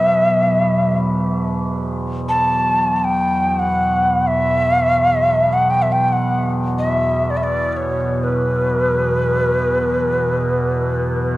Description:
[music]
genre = world meditative, free-time meditation music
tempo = free time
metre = none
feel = none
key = E minor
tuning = A4 = 439 Hz
[part]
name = breathy Native American-style cedar flute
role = melody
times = 0.0-11.4 s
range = B4 to A5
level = -17 LUFS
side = equal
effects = tape echo
[part]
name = overtone-sweeping drone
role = drone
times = 0.0-11.4 s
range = E2 to B2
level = -21 LUFS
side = right 1 dB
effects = chorus, built-in reverb, cassette tape
[part]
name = bronze singing bowl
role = texture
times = 0.0-2.0 s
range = F#3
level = -26 LUFS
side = equal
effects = cassette tape
[sound]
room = wet spring reverb, RT60 1.3 s, small room ambience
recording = home recording on cassette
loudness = -15 LUFS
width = side -17 dB against mid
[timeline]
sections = 0.0-1.4 A section; 1.4-11.4 A section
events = none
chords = none

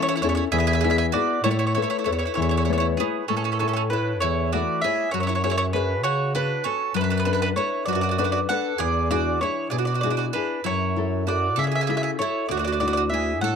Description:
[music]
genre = italian folk, Italian serenade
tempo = 65 BPM (dotted quarters)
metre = 6/8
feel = straight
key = A major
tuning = A4 = 440 Hz
[part]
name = mandolin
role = melody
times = 0.0-13.6 s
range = G#4 to F#5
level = -26 LUFS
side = right 1 dB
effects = none
[part]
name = bowl-back mandolin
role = second line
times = 0.0-13.6 s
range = B3 to A4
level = -29 LUFS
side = right 13 dB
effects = none
[part]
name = nylon-string guitar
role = accompaniment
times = 0.0-13.6 s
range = B2 to E5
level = -27 LUFS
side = left 13 dB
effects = none
[part]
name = mellow bass clarinet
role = bass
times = 0.2-13.6 s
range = D2 to C#3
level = -26 LUFS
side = right 1 dB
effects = none
[sound]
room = moderate spring reverb, RT60 1.7 s, small room ambience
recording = 1960s-style stereo with parts hard left and right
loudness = -21 LUFS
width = side -6 dB against mid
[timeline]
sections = 0.0-3.3 A section; 3.3-13.6 B section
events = none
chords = 0.0 A/E; 0.5 E; 1.4 Aadd9; 3.3 A; 5.1 F#sus2; 6.9 Bm7/F#; 8.8 E7; 10.6 F#m7; 12.5 Dadd9

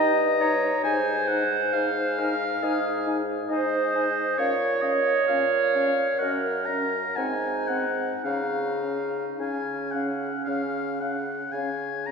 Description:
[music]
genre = classical, slow romantic movement for wind quintet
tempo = 51-70 BPM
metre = 4/4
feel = rubato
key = Db major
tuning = A4 = 440 Hz
[part]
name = concert flute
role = melody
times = 0.0-11.7 s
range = Eb5 to Bb5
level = -36 LUFS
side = left 6 dB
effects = none
[part]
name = clear oboe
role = second line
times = 0.0-12.1 s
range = Db5 to Bb5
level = -30 LUFS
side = left 4 dB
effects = none
[part]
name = clear French horn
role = accompaniment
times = 0.0-12.1 s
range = C4 to Eb4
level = -33 LUFS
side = left 1 dB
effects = none
[part]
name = warm clarinet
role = accompaniment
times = 0.0-12.1 s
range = Db4 to Eb5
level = -26 LUFS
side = right 3 dB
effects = none
[part]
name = mellow bassoon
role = bass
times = 0.0-12.1 s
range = Gb2 to Db3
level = -30 LUFS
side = equal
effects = none
[sound]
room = wet church reverb, RT60 3.1 s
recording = none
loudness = -23 LUFS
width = side -5 dB against mid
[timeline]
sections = 0.0-12.1 A section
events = none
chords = 0.0 Eb/G; 0.8 Ab; 4.4 Bbm; 6.2 Ebm7/Gb; 7.2 Ab7; 8.2 Db

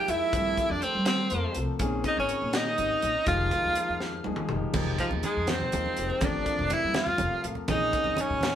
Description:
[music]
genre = electric jazz fusion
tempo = 82 BPM (dotted quarters)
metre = 6/8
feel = straight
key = F minor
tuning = A4 = 440 Hz
[part]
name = breathy tenor saxophone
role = melody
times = 0.0-8.6 s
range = F3 to G4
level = -28 LUFS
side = right 1 dB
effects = none
[part]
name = overdriven electric guitar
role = second line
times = 0.0-8.6 s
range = F4 to F5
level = -34 LUFS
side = right 1 dB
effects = none
[part]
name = warm concert grand piano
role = accompaniment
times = 0.0-8.6 s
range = Eb3 to Bb4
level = -34 LUFS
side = left 4 dB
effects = none
[part]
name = upright bass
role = bass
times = 0.1-8.6 s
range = F1 to G3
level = -33 LUFS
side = equal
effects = none
[part]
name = crisp fusion drum kit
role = drums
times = 0.1-8.5 s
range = crash cymbal, hi-hat, kick drum, snare drum, toms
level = -32 LUFS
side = equal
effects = none
[part]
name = congas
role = percussion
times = 4.7-8.5 s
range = none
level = -34 LUFS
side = right 2 dB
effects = none
[sound]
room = moderate studio reverb, RT60 0.8 s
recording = band playing live in one room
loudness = -25 LUFS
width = side -10 dB against mid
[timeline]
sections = 0.0-4.7 A section; 4.7-8.6 A section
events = drum fill 4.0-4.7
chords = 0.3 Gm11; 1.8 Bbm11; 3.3 Fm11; 6.2 Gm11; 7.7 Bbm11

